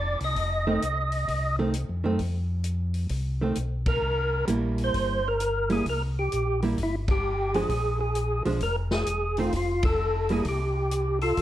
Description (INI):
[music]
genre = soul jazz organ trio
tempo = 131 BPM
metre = 4/4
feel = swing 66% on 8ths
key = unclear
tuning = A4 = 440 Hz
[part]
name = percussive tonewheel organ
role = melody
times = 0.0-11.4 s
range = E4 to Eb5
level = -27 LUFS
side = equal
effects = overdrive, chorus vibrato, slow rotary speaker
[part]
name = mellow tonewheel organ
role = bass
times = 0.0-11.4 s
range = E1 to Gb2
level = -28 LUFS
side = equal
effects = slow rotary speaker
[part]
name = vintage drum kit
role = drums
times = 0.2-11.4 s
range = hi-hat, kick drum, ride cymbal, snare drum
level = -33 LUFS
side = equal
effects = none
[part]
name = archtop guitar, miked and amplified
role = accompaniment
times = 0.7-10.5 s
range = Eb3 to E4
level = -28 LUFS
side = right 2 dB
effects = none
[sound]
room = light reverb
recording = dark, warm production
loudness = -24 LUFS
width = side -13 dB against mid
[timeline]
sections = 0.0-11.4 A section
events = band accent 3.8, 7.0, 9.8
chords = 0.4 F7; 4.0 C7; 7.7 Bb7(no3); 9.5 F; 10.5 C5